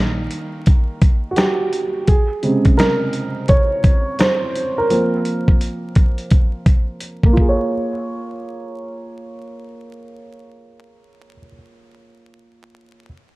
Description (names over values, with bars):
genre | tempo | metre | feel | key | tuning
lo-fi hip hop | 85 BPM | 4/4 | swing 63% on 16ths | Bb dorian | A4 = 441 Hz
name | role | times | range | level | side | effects
dark upright piano | accompaniment | 0.0-13.1 s | C3 to Db5 | -20 LUFS | right 1 dB | cassette tape, low-pass filter
dusty soul sampler-style drum kit | drums | 0.3-7.6 s | hi-hat, kick drum, snare drum | -15 LUFS | equal | vintage 12-bit sampler grit
room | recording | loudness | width
light reverb, digital ambience | dark, warm production, vinyl crackle | -15 LUFS | side -21 dB against mid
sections
0.0-7.7 A section; 7.7-10.5 B section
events
upright piano solo 0.0-7.7; filter sweep on upright piano 0.0-7.7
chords
0.0 Cm7 (rootless); 2.1 Bbm7; 4.9 Fsus4; 7.4 Bbm7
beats
0.67 1.37 | 2.08 2.78 3.49 4.20 | 4.90 5.61 6.31 7.02 | 7.72 8.43 9.14 9.84